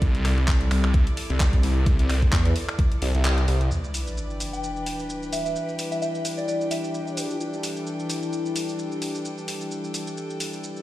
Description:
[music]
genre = bass house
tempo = 130 BPM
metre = 4/4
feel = swing 56% on 16ths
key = E minor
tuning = A4 = 440 Hz
[part]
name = phased detuned saw bass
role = bass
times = 0.0-3.7 s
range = C2 to E2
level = -21 LUFS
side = equal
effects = phaser, tube saturation, sidechain pumping
[part]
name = electronic kick drum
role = drums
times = 0.0-2.9 s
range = none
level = -20 LUFS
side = equal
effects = overdrive, small room ambience
[part]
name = garage drum kit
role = drums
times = 0.0-10.8 s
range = finger snaps, handclaps, hi-hat, shaker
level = -32 LUFS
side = equal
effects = small room ambience
[part]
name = rich chamber string section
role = texture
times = 0.0-10.8 s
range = E3 to G5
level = -33 LUFS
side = left 1 dB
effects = sidechain pumping
[part]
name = sweeping resonant pad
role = sustained chords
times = 4.8-10.8 s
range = G3 to G4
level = -32 LUFS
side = left 2 dB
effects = chorus, phaser, vintage 12-bit sampler grit, sidechain pumping
[part]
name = sub drop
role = sound effects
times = 3.7-5.6 s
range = none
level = -32 LUFS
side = equal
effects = none
[part]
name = soft synth bell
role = melody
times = 4.5-7.2 s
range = D5 to G5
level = -30 LUFS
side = equal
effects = chorus, phaser, ping-pong delay
[sound]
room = light reverb, digital ambience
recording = played on a big sound system in a bare room, stone room reverb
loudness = -22 LUFS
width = side -15 dB against mid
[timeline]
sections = 0.0-3.7 A section; 3.7-10.8 B section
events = kick drops out 3.2-3.7; band accent 3.2; impact 3.7-5.6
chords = 0.0 C; 3.7 Em

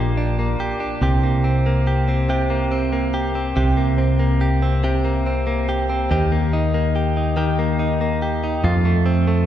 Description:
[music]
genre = six-eight pop ballad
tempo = 47 BPM (dotted quarters)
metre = 6/8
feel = straight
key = unclear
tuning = A4 = 442 Hz
[part]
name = direct-recorded clean electric guitar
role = accompaniment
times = 0.0-9.5 s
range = F2 to G4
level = -20 LUFS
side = right 1 dB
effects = spring reverb
[part]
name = fingered electric bass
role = bass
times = 0.0-9.5 s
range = Bb1 to F2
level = -20 LUFS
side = equal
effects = none
[sound]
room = wet scoring stage reverb, RT60 1.5 s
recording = recorded in a church or concert hall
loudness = -17 LUFS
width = side -10 dB against mid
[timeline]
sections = 0.0-9.5 A section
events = none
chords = 0.0 Bb6; 1.0 C5; 6.1 Eb; 8.6 F

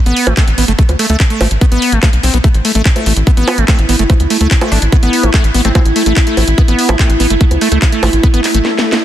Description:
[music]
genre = psychedelic trance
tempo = 145 BPM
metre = 4/4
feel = straight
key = A minor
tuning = A4 = 440 Hz
[part]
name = liquid acid bass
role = riff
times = 0.1-8.6 s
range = A3 to C4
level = -16 LUFS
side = moving between left 6 dB and right 6 dB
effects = chorus, auto-pan, sidechain pumping, dub echo
[part]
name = tight sequencer bass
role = bass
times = 0.1-8.6 s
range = G1 to D2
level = -13 LUFS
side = equal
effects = none
[part]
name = garage drum kit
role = drums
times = 0.1-9.0 s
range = bongos, handclaps, hi-hat, snare drum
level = -17 LUFS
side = right 1 dB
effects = none
[part]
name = metallic wobble bass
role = second line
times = 0.4-1.2, 3.7-7.8 s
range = A3 to D4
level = -28 LUFS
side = left 3 dB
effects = none
[part]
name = electronic kick drum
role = drums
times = 0.4-8.3 s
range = none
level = -10 LUFS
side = equal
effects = none
[part]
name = evolving wavetable pad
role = sustained chords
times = 2.7-9.0 s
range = E4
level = -18 LUFS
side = right 2 dB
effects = chorus, built-in reverb, sidechain pumping
[part]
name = swell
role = sound effects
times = 8.4-9.0 s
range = none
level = -19 LUFS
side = left 3 dB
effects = none
[sound]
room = light reverb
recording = dense, heavily limited modern master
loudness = -9 LUFS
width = side -12 dB against mid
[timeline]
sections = 0.0-9.0 A section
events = swell 8.4-9.0; break 8.6-9.0; drum fill 8.6-9.0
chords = 0.0 A5

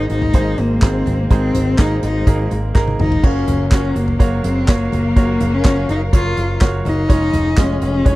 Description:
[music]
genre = piano-driven pop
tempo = 124 BPM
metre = 4/4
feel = straight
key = unclear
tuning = A4 = 440 Hz
[part]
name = warm cello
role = melody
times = 0.0-8.2 s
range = Bb3 to F4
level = -19 LUFS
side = left 2 dB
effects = none
[part]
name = bright upright piano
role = accompaniment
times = 0.0-8.2 s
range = Ab2 to Eb5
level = -24 LUFS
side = right 4 dB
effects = none
[part]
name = dark studio string section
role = sustained chords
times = 0.0-8.2 s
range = F3 to F5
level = -29 LUFS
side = left 2 dB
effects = none
[part]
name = overdriven picked electric bass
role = bass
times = 0.0-8.2 s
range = F1 to Ab1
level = -20 LUFS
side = equal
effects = none
[part]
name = unplugged drum kit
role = drums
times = 0.1-8.2 s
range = crash cymbal, handclaps, hi-hat, kick drum, snare drum, toms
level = -15 LUFS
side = equal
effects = none
[part]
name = group handclap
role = percussion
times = 0.8-7.7 s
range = none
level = -34 LUFS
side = left 4 dB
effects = none
[sound]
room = little or no reverb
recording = dry, close 1970s-style studio recording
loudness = -14 LUFS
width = side -18 dB against mid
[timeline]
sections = 0.0-8.2 A section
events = drum fill 2.8-3.2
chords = 0.0 Abadd9; 3.2 Gbmaj7; 7.1 Db/F

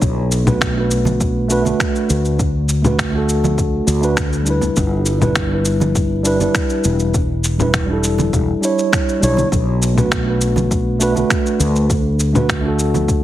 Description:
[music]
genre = sunset chillout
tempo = 101 BPM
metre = 4/4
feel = straight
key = B minor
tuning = A4 = 436 Hz
[part]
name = fretless electric bass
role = bass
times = 0.0-13.2 s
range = E1 to D2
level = -18 LUFS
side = equal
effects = wide subtle chorus
[part]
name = electronic kick drum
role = drums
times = 0.0-13.2 s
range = none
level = -21 LUFS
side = equal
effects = overdrive
[part]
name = electronic shaker, congas and finger snaps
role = drums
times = 0.0-13.2 s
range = none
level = -21 LUFS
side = left 2 dB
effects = none
[part]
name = mellow tine electric piano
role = accompaniment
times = 0.4-13.2 s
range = G3 to C#5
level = -18 LUFS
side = moving between left 3 dB and right 4 dB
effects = auto-pan, ping-pong delay
[part]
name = congas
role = percussion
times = 1.1-13.1 s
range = none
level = -23 LUFS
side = right 4 dB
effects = none
[sound]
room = moderate plate reverb, RT60 1.3 s, digital ambience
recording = heavily compressed radio sound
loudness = -14 LUFS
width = side -13 dB against mid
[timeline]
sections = 0.0-13.2 A section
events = none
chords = 0.0 Bm7; 2.4 D6; 4.8 G6; 7.1 Em7; 9.5 Bm7; 11.9 D6

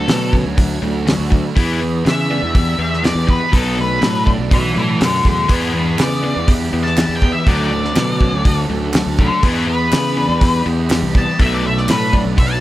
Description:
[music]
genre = indie rock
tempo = 122 BPM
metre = 4/4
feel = straight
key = E dorian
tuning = A4 = 440 Hz
[part]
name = octave-fuzz lead guitar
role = melody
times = 0.0-12.6 s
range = G4 to A5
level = -20 LUFS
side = left 2 dB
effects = distortion
[part]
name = cranked stack guitar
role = riff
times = 0.0-12.6 s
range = B2 to E4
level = -22 LUFS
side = left 4 dB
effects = overdrive
[part]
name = overdriven electric guitar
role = riff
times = 0.0-12.6 s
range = E3 to A4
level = -24 LUFS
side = right 8 dB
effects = ensemble chorus
[part]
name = fuzz fingered electric bass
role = bass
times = 0.0-12.6 s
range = B1 to C#3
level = -20 LUFS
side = equal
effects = overdrive
[part]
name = cloth-damped thuddy drum kit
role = drums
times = 0.1-12.5 s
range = hi-hat, kick drum, snare drum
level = -17 LUFS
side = equal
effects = none
[part]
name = combo organ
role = sustained chords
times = 5.5-12.6 s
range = C#3 to D5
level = -32 LUFS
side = right 2 dB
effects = none
[part]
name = group handclap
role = percussion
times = 6.0-12.0 s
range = none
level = -28 LUFS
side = right 7 dB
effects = none
[sound]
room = small room ambience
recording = none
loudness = -13 LUFS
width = side -15 dB against mid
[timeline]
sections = 0.0-12.6 A section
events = lead electric guitar solo 0.0-12.6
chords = 0.0 Dmaj7; 1.6 Em7; 3.5 Bm7; 5.5 Em7; 7.5 Dmaj7; 9.4 Em7; 11.4 Bm7

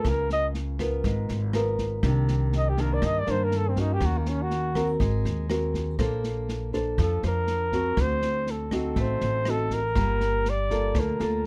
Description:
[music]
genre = bossa nova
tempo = 121 BPM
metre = 4/4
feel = straight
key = G minor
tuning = A4 = 440 Hz
[part]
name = mellow flugelhorn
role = melody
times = 0.0-11.5 s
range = Bb3 to Eb5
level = -30 LUFS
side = equal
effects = none
[part]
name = nylon-string guitar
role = accompaniment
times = 0.0-11.5 s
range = G2 to C5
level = -32 LUFS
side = equal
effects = none
[part]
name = upright bass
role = bass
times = 0.0-11.5 s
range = G1 to G2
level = -30 LUFS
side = equal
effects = none
[part]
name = open jazz drum kit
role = drums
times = 0.0-11.3 s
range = kick drum, rim click, snare drum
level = -34 LUFS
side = equal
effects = none
[sound]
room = little or no reverb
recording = close, detailed microphones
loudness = -26 LUFS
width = mono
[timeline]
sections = 0.0-11.5 A section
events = flugelhorn solo 0.0-11.5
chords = 0.1 C#6; 2.0 Cm9; 4.0 Ebm7; 5.0 Ab9; 6.0 Bbmaj9; 8.0 D7b9; 10.0 Gm9

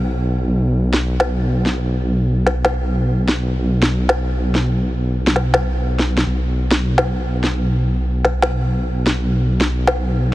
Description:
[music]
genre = half-time drum and bass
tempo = 166 BPM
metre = 4/4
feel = half-time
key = unclear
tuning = A4 = 445 Hz
[part]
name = dark detuned saw bass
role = bass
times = 0.0-10.3 s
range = B1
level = -17 LUFS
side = equal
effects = none
[part]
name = electronic snare drum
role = drums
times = 0.9-9.9 s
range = none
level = -20 LUFS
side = equal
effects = none
[sound]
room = light reverb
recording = heavily compressed radio sound, multiband compression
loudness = -16 LUFS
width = side -16 dB against mid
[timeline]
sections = 0.0-10.3 A section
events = none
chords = none

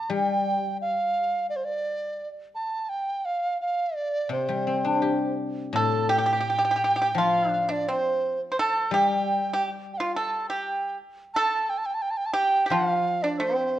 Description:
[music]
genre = chinese traditional, Chinese chamber ensemble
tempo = 86 BPM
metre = 4/4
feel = straight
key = unclear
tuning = A4 = 441 Hz
[part]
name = reedy large dizi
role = melody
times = 0.0-13.8 s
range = C5 to A5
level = -26 LUFS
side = right 2 dB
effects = none
[part]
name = guzheng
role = accompaniment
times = 0.1-13.8 s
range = A2 to G4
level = -28 LUFS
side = left 4 dB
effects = none
[part]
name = pipa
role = second line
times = 5.8-13.8 s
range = C4 to C5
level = -27 LUFS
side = right 2 dB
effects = none
[sound]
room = moderate recital hall reverb, RT60 1.4 s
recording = worn, warbling old tape, cassette tape, warbly pitch drift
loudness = -23 LUFS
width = side -13 dB against mid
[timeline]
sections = 0.0-5.7 A section; 5.7-13.8 B section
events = none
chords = none

